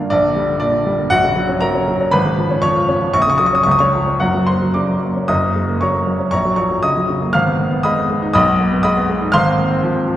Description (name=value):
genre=classical, virtuoso piano study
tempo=119 BPM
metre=2/4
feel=rubato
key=F# major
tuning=A4 = 440 Hz
part: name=dark baby grand piano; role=solo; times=0.0-10.2 s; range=F#1 to E#6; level=-14 LUFS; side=equal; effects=none
room=wet concert hall reverb, RT60 2.4 s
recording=heard from further back in the room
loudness=-14 LUFS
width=side -12 dB against mid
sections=0.0-5.3 A section; 5.3-10.2 B section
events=none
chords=0.1 Gm/Bb; 1.1 F#/A#; 2.1 C#7/G#; 3.1 F#/A#; 3.7 C#; 4.2 F#; 6.3 F#/A#; 7.3 G#m; 8.3 G#m/B; 9.3 Fm/Ab